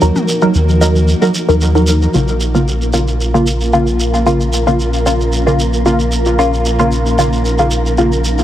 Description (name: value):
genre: dub techno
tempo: 113 BPM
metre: 4/4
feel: straight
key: Bb minor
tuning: A4 = 440 Hz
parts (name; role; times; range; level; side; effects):
- granular cloud pad; sustained chords; 0.0-8.4 s; Bb3 to Bb4; -21 LUFS; equal; built-in reverb
- filtered dub chord stab; stabs; 0.0-8.1 s; Db3 to Bb4; -14 LUFS; equal; chorus, phaser, dub echo
- round analog bass; bass; 0.0-8.4 s; Bb1 to Eb2; -15 LUFS; equal; tube saturation
- shekere; percussion; 0.0-8.4 s; none; -24 LUFS; right 2 dB; none
- electronic toms and congas; percussion; 0.2-2.1 s; none; -20 LUFS; left 1 dB; overdrive, dub echo
- wind-like tuned noise texture; texture; 2.8-8.4 s; Bb4; -27 LUFS; left 1 dB; built-in reverb
room: light reverb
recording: heavily compressed radio sound, multiband compression, vinyl crackle, faint mains hum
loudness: -11 LUFS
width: side -12 dB against mid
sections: 0.0-2.1 A section; 2.1-8.4 B section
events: none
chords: 0.0 Ebm; 2.1 Bbm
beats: | 0.02 0.55 1.08 1.61 | 2.14 2.67 3.20 3.73 | 4.26 4.80 5.33 5.86 | 6.39 6.92 7.45 7.98